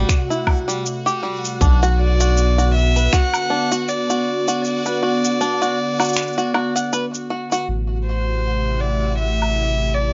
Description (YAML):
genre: folktronica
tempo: 79 BPM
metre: 4/4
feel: swing 56% on 16ths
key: A dorian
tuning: A4 = 435 Hz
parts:
  - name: warbly tape-like pad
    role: sustained chords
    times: 0.0-10.1 s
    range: C3 to G4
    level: -28 LUFS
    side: equal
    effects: chorus, built-in reverb, phaser
  - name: bluegrass banjo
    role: arpeggios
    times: 0.0-7.7 s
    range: G3 to F#5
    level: -25 LUFS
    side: equal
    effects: digital delay
  - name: round analog bass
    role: bass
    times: 0.0-3.1, 7.7-10.1 s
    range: A1 to B1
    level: -20 LUFS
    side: equal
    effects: none
  - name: backwards swelling texture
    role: texture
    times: 0.0-10.1 s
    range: E4 to F#5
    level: -32 LUFS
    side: equal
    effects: built-in reverb
  - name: electronic finger snaps, shaker and woodblock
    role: drums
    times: 0.1-9.6 s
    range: none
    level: -27 LUFS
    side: equal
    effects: low-pass filter on perc, low-pass filter on snare
  - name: electronic kick drum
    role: drums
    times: 0.1-3.3 s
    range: none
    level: -19 LUFS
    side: equal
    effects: none
  - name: warm violin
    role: melody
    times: 2.0-10.1 s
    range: C5 to F#5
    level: -25 LUFS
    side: equal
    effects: digital delay
room: light reverb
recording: nothing above 7.5 kHz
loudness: -19 LUFS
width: mono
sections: 0.0-7.7 A section; 7.7-10.1 B section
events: break 4.6-7.7; filter sweep on drum 7.7-10.1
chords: 0.0 Am7; 1.6 Bm; 7.7 Am7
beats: 0.09 0.85 | 1.61 2.37 3.13 3.89 | 4.65 5.41 6.17 6.93 | 7.68 8.45 9.20 9.96